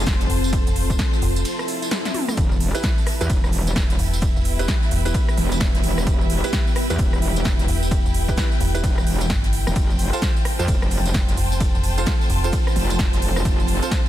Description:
bass house; 130 BPM; 4/4; swing 61% on 16ths; E phrygian; A4 = 440 Hz
deep dark ambient pad; sustained chords; 0.0-14.1 s; B3 to A4; -30 LUFS; left 1 dB; chorus, built-in reverb, sidechain pumping
metallic wobble bass; bass; 0.0-13.8 s; E1 to F2; -23 LUFS; equal; distortion, chorus, overdrive, sidechain pumping
clear studio string section; texture; 0.0-14.1 s; E4 to A5; -30 LUFS; equal; sidechain pumping
big-room dance drum kit; drums; 0.1-14.1 s; hi-hat, ride cymbal, rim click, snare drum, tambourine, toms; -27 LUFS; right 1 dB; overdrive
electronic kick drum; drums; 0.1-14.0 s; -21 LUFS; equal; overdrive
jazz brush drum kit; drums; 0.1-14.1 s; hi-hat, shaker, snare drum; -37 LUFS; left 1 dB
metallic FM bass; bass; 0.3-12.5 s; E1 to G1; -22 LUFS; equal; tube saturation, sidechain pumping
swell; sound effects; 1.6-2.4 s; -32 LUFS; equal
clear grand piano; stabs; 2.7-14.0 s; E4 to C5; -31 LUFS; right 4 dB; sidechain pumping, dub echo
small room ambience; dense, heavily limited modern master; -18 LUFS; side -13 dB against mid
0.0-14.1 A section
break 1.5-2.4; swell 1.6-2.4; drum fill 1.9-2.4
0.0 F; 2.4 Em; 9.8 F

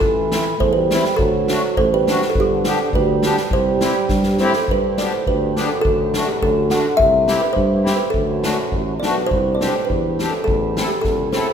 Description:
alpine folk, alpine dance band; 103 BPM; 2/4; straight; C major, G major from 4.7 s; A4 = 440 Hz
kalimba; melody; 0.0-11.5 s; G4 to F#5; -19 LUFS; right 1 dB
clear euphonium; second line; 0.0-11.5 s; E2 to A3; -24 LUFS; right 5 dB
mellow tuba; bass; 0.0-11.4 s; G1 to G2; -23 LUFS; equal
street-band drum kit; drums; 0.0-11.5 s; kick drum, snare drum; -24 LUFS; left 1 dB
accordion; accompaniment; 0.3-11.5 s; A3 to A4; -24 LUFS; left 3 dB; light tremolo tuning
moderate scoring stage reverb, RT60 1.8 s; recorded in a church or concert hall; -16 LUFS; side -7 dB against mid
0.0-4.7 A section; 4.7-11.5 B section
drum fill 4.1-4.7
0.0 Am; 1.2 D; 2.4 G; 3.5 C; 4.7 G; 5.9 D; 7.0 C; 8.1 D; 9.3 Csus2; 10.5 Am

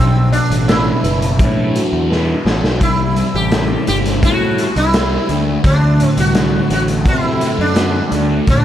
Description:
psychedelic rock; 85 BPM; 4/4; straight; D mixolydian; A4 = 438 Hz
sitar; melody; 0.0-8.6 s; C4 to G4; -20 LUFS; right 1 dB; tape echo
fuzz guitar; riff; 0.0-8.6 s; D2 to C5; -17 LUFS; equal; distortion, phaser
fuzz picked electric bass; bass; 0.0-8.6 s; F#1 to C3; -18 LUFS; equal; overdrive
raw garage drum kit; drums; 0.3-8.6 s; hi-hat, kick drum, snare drum; -18 LUFS; equal; tape echo
small room ambience; echo-heavy mix; -12 LUFS; side -11 dB against mid
0.0-8.6 A section
drum fill 2.1-2.8
0.0 Bm; 2.8 C; 5.3 D

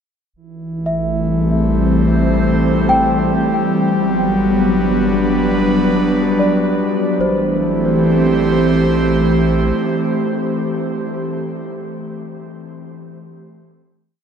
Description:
ambient; 70 BPM; 4/4; straight; A dorian; A4 = 439 Hz
round analog bass; bass; 0.3-9.7 s; G1 to A1; -25 LUFS; equal
airy breathy pad; sustained chords; 0.6-11.4 s; E3 to C5; -15 LUFS; equal; chorus
celesta; arpeggios; 0.9-13.1 s; C5 to G5; -22 LUFS; equal; ping-pong delay
wet huge ambient reverb, RT60 8.8 s; dark, warm production; -14 LUFS; side -7 dB against mid
0.3-7.2 A section; 7.2-10.6 final chord
fade-out on analog synth bass 0.3-7.2
0.3 Am7; 3.8 Gmaj7; 7.2 Am7

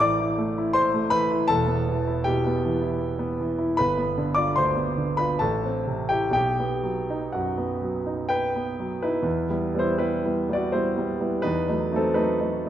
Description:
classical, romantic character piece for solo piano; 60-86 BPM; 3/4; rubato; E minor; A4 = 440 Hz
warm concert grand piano; solo; 0.0-12.7 s; E1 to D6; -22 LUFS; equal
moderate scoring stage reverb, RT60 1.9 s; dark, warm production; -22 LUFS; side -11 dB against mid
0.0-9.2 A section; 9.2-12.7 B section
0.0 Am; 1.5 Em; 3.8 G7; 5.4 Am; 6.4 B; 9.2 Em; 11.5 B7b9

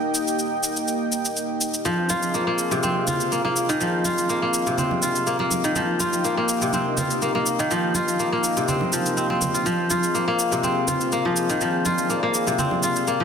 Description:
afro house; 123 BPM; 4/4; straight; F minor; A4 = 439 Hz
warm analog pad; sustained chords; 0.0-13.2 s; Bb3 to G5; -27 LUFS; equal; chorus
shaker; drums; 0.1-13.2 s; -28 LUFS; equal; overdrive
kora; arpeggios; 1.9-13.2 s; C3 to F4; -22 LUFS; left 1 dB; vintage 12-bit sampler grit, ping-pong delay
congas; percussion; 1.9-13.2 s; -31 LUFS; right 4 dB
moderate lush hall reverb, RT60 1.7 s, small room ambience; dense, heavily limited modern master; -20 LUFS; side -7 dB against mid
0.0-13.2 A section
0.0 Eb; 1.9 Fm7; 5.8 Eb; 9.7 Fm7

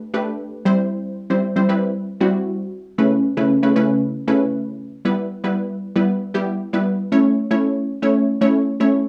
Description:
pop; 116 BPM; 4/4; straight; A4 = 440 Hz
unison pluck; solo; 0.1-9.0 s; C#3 to C#5; -20 LUFS; equal
wet studio reverb, RT60 0.6 s; rough home demo mix, small room ambience; -20 LUFS; mono
0.0-5.1 A section; 5.1-9.1 B section
0.0 Gadd9; 0.7 C; 3.0 Aadd9/C#; 5.1 Em; 7.1 A

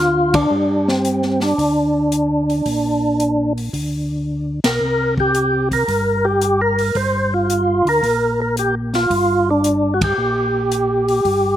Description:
soul jazz organ trio; 112 BPM; 4/4; swing 69% on 8ths; G minor; A4 = 441 Hz
percussive tonewheel organ; melody; 0.0-11.6 s; C4 to C5; -16 LUFS; equal; slow rotary speaker, overdrive, chorus vibrato, slapback echo
tonewheel organ; bass; 0.0-11.6 s; G1 to G2; -22 LUFS; equal; chorus vibrato, slow rotary speaker
swinging big-band drum kit; drums; 0.3-11.4 s; hi-hat, kick drum, ride cymbal, snare drum; -25 LUFS; left 1 dB
little or no reverb; recorded outdoors, with no room sound; -15 LUFS; side -11 dB against mid
0.0-11.6 A section
band accent 0.2, 4.5, 9.9; drum fill 4.3-4.8
0.0 Gm; 4.8 C5; 7.0 Gm7

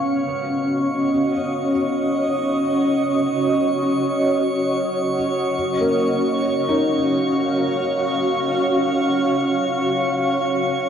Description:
ambient; free time; B lydian; A4 = 440 Hz
granular cloud pad; sustained chords; 0.0-10.9 s; C#4 to E#5; -19 LUFS; equal; built-in reverb
felt-muted upright piano; arpeggios; 0.0-10.9 s; A#3 to D#5; -28 LUFS; left 1 dB; lush chorus, tape echo
drifting glass-harmonics texture; texture; 0.0-10.9 s; C#6; -29 LUFS; left 1 dB; chorus, built-in reverb
wet plate reverb, RT60 2.5 s; dreamy mix soaked in reverb; -18 LUFS; side -8 dB against mid
0.0-10.9 A section
0.0 Bmaj9; 5.5 A#m

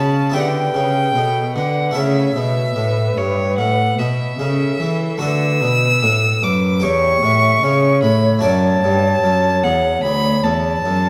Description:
classical, baroque-style sonata movement with continuo; 75 BPM; 4/4; straight; D major; A4 = 440 Hz
clear violin; melody; 0.0-11.1 s; C#5 to E6; -22 LUFS; equal
harpsichord; accompaniment; 0.0-11.1 s; D2 to D5; -25 LUFS; equal
rich cello; bass; 0.0-11.1 s; D2 to E3; -21 LUFS; equal
mellow hollow concert flute; second line; 0.3-11.1 s; A4 to E5; -23 LUFS; equal
wet recital hall reverb, RT60 1.8 s; -17 LUFS; mono
0.0-11.1 A section
0.3 Em7; 2.0 A; 5.2 D; 6.8 C#dim/E; 8.4 D

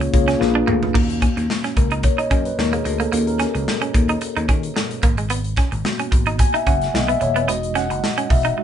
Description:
polished 1980s jazz-funk pop; 110 BPM; 4/4; swing 54% on 16ths; Eb phrygian; A4 = 440 Hz
mellow tine electric piano; accompaniment; 0.0-8.6 s; G#3 to Ab5; -22 LUFS; left 2 dB; medium stereo tremolo
clean electric guitar; riff; 0.0-8.6 s; Ab3 to Eb4; -24 LUFS; right 5 dB
vintage slap bass; bass; 0.0-8.5 s; Eb1 to Eb3; -23 LUFS; equal
modern studio drum kit; drums; 0.0-8.6 s; crash cymbal, hi-hat, kick drum, snare drum, toms; -20 LUFS; equal
moderate small room ambience, RT60 0.5 s; band playing live in one room, nothing above 10.4 kHz; -17 LUFS; side -9 dB against mid
1.0-8.6 A section
drum fill 0.4-1.0; tine electric piano solo 1.0-8.6
0.4 Bb7b9; 1.0 Ebm7; 5.0 Abm7; 7.5 Emaj9

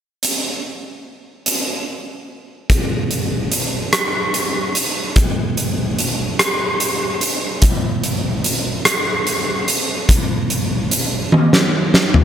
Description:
rock; 49 BPM (dotted quarters); 6/8; straight
huge arena drum kit; drums; 0.2-12.2 s; hi-hat, kick drum, rim click, snare drum, toms; -16 LUFS; equal
little or no reverb; -16 LUFS; side -9 dB against mid
0.2-2.7 A section; 2.7-12.2 B section
drum fill 11.3-12.2

